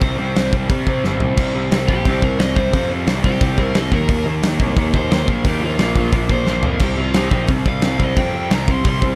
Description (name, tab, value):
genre	punk rock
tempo	176 BPM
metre	4/4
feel	straight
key	C minor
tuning	A4 = 440 Hz
part	crunchy overdriven guitar	melody	0.0-9.0 s	Eb4 to C6	-29 LUFS	equal	tape echo
part	raw garage guitar	riff	0.0-9.2 s	Bb2 to Eb4	-24 LUFS	equal	overdrive
part	fuzz picked electric bass	bass	0.0-9.2 s	G1 to C3	-24 LUFS	equal	overdrive
part	big rock drum kit	drums	0.0-9.1 s	crash cymbal, hi-hat, kick drum, snare drum, toms	-21 LUFS	equal	none
room	little or no reverb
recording	none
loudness	-18 LUFS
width	mono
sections	0.0-1.4 A section; 1.4-9.2 B section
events	drum fill 1.0-1.4, 6.5-6.8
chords	0.0 C5; 3.9 Eb5; 5.3 Bb5; 6.8 C5